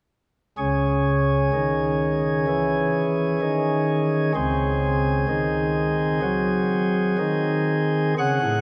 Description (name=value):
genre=classical, chorale-style piece for pipe organ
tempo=63 BPM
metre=4/4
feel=straight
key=C# minor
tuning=A4 = 440 Hz
part: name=pipe organ, sparkling flutes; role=solo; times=0.6-8.6 s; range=C#2 to F#5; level=-22 LUFS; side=equal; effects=none
room=wet cathedral reverb, RT60 4.2 s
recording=dark, warm production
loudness=-22 LUFS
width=mono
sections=0.6-8.2 A section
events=none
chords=0.6 C#m; 4.4 G#7/C#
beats=| 0.57 1.53 2.48 3.42 | 4.36 5.29 6.23 7.20 | 8.18